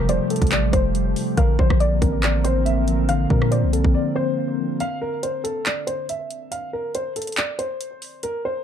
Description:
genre	hip hop, trap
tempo	140 BPM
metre	4/4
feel	half-time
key	unclear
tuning	A4 = 440 Hz
part	dark concert grand piano	melody	0.0-8.6 s	A4 to F5	-26 LUFS	right 1 dB	low-pass filter, digital delay
part	soft round pluck	second line	0.0-4.4 s	C5 to F5	-31 LUFS	left 5 dB	chorus, digital delay
part	mellow tine electric piano	accompaniment	0.0-4.8 s	C3 to C4	-24 LUFS	left 1 dB	medium stereo tremolo, low-pass filter
part	deep dark ambient pad	sustained chords	0.0-4.8 s	D3 to Bb4	-29 LUFS	left 2 dB	chorus, built-in reverb
part	long sustained 808-style bass	bass	0.0-3.9 s	E1 to Bb2	-21 LUFS	equal	none
part	trap drum kit	drums	0.1-8.3 s	handclaps, hi-hat, kick drum, rim click	-22 LUFS	equal	overdrive
room	little or no reverb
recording	dark, warm production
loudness	-19 LUFS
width	side -9 dB against mid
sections	0.0-4.8 A section; 4.8-8.6 B section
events	break 3.9-4.8, 4.8-8.6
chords	0.0 Fadd9; 1.4 Bbadd9; 4.8 N.C.

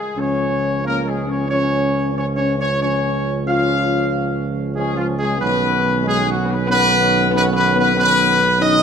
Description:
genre	classical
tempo	93 BPM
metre	4/4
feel	straight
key	unclear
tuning	A4 = 439 Hz
part	clear trumpet section	melody	0.0-8.8 s	E#4 to E#5	-18 LUFS	left 1 dB	none
part	mellow French horn section	sustained chords	0.0-8.8 s	E#3 to G#4	-23 LUFS	left 6 dB	none
part	warm trombone section	sustained chords	0.2-8.8 s	D#3 to C#4	-26 LUFS	right 6 dB	none
part	mellow tuba	bass	0.2-8.8 s	B1 to C#2	-22 LUFS	right 3 dB	none
room	wet concert hall reverb, RT60 2.5 s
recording	none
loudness	-15 LUFS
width	side -7 dB against mid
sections	0.2-8.8 A section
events	none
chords	0.2 C#; 5.4 Badd9

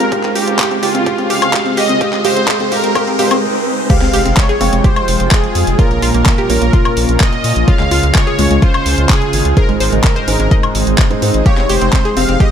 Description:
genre	progressive house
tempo	127 BPM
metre	4/4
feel	straight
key	F minor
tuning	A4 = 440 Hz
part	soft supersaw	melody	0.0-12.5 s	F4 to F5	-18 LUFS	equal	phaser, sidechain pumping, tape echo
part	shimmering ambient pad	sustained chords	0.0-12.5 s	Db3 to G5	-21 LUFS	left 1 dB	chorus, built-in reverb, sidechain pumping
part	analog pluck	arpeggios	0.0-12.5 s	Ab3 to Eb5	-20 LUFS	left 1 dB	chorus, sidechain pumping, tape echo
part	felt-muted upright piano	stabs	0.0-12.5 s	Ab2 to G5	-20 LUFS	right 4 dB	sidechain pumping, tape echo
part	round analog bass	bass	0.0-12.4 s	F1 to Bb2	-17 LUFS	equal	sidechain pumping, high-pass filter
part	pop drum kit	drums	0.0-12.5 s	crash cymbal, handclaps, hi-hat, woodblock	-19 LUFS	left 1 dB	overdrive
part	riser and sub drop	sound effects	0.2-5.8 s	none	-23 LUFS	right 1 dB	none
part	electronic kick drum	drums	0.1-12.5 s	none	-12 LUFS	equal	overdrive, high-pass filter on kick, high-pass filter on room
room	light reverb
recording	none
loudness	-10 LUFS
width	side -8 dB against mid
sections	0.0-3.9 A section; 3.9-12.5 B section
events	build-up 0.0-3.9; filter sweep on synth arpeggio sound 0.0-3.9; filter sweep on felt piano 0.0-3.9; riser 0.2-3.9; break 3.4-3.9; drop 3.9-12.5; impact 3.9-5.8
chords	0.1 Db; 2.0 Ab; 3.9 Fmadd9; 5.8 Bbm; 7.7 Db; 9.6 Ab; 11.5 Fmadd9

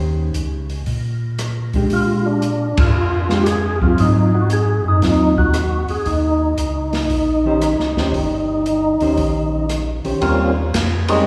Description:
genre	soul jazz organ trio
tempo	116 BPM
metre	4/4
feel	swing 67% on 8ths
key	Eb mixolydian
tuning	A4 = 440 Hz
part	hollow-body jazz guitar	accompaniment	0.0-10.2 s	Eb3 to C5	-24 LUFS	equal	none
part	tonewheel organ	bass	0.0-11.2 s	G1 to Bb2	-23 LUFS	equal	chorus vibrato, slow rotary speaker
part	open jazz drum kit	drums	0.3-11.2 s	hi-hat, kick drum, ride cymbal, rim click, snare drum	-25 LUFS	equal	none
part	percussive tonewheel organ	melody	1.9-11.3 s	G3 to Ab4	-21 LUFS	equal	slow rotary speaker, overdrive, chorus vibrato
part	breathy tenor saxophone	melody	11.1-11.3 s	Ab3	-19 LUFS	equal	none
room	wet concert hall reverb, RT60 2.0 s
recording	recorded in a church or concert hall, small room reverb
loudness	-18 LUFS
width	mono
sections	0.0-10.2 A section; 10.2-11.3 B section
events	band accent 2.7; tenor saxophone solo 10.2-11.3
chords	0.0 Eb6; 1.9 Bb13; 4.0 Ab6; 6.1 Eb6; 10.2 Eb13

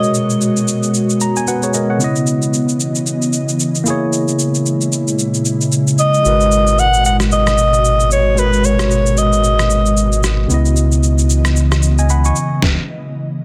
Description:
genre	amapiano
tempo	113 BPM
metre	4/4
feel	swing 58% on 16ths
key	G# minor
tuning	A4 = 440 Hz
part	breathy alto saxophone	melody	0.0-0.1, 6.0-10.2 s	B4 to F#5	-18 LUFS	equal	tape echo
part	tine electric piano	accompaniment	0.0-12.6 s	C#3 to C#6	-21 LUFS	equal	none
part	ethereal airy pad	sustained chords	0.0-12.6 s	A#2 to D#5	-22 LUFS	equal	ensemble chorus, built-in reverb, sidechain pumping
part	trip hop sampler-style drum kit	drums	0.0-12.8 s	kick drum, rim click, shaker, snare drum	-22 LUFS	equal	overdrive
part	sub bass with octave	bass	6.3-12.3 s	G#1 to C#2	-17 LUFS	equal	none
room	light reverb, digital ambience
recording	dense, heavily limited modern master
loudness	-15 LUFS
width	mono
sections	0.0-13.4 A section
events	tine electric piano fill 0.9-2.0; stop 12.6-13.4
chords	0.0 G#m9; 2.0 C#m9; 3.9 A#m7b5; 6.3 G#m9; 10.5 C#m9; 12.4 A#m7b5

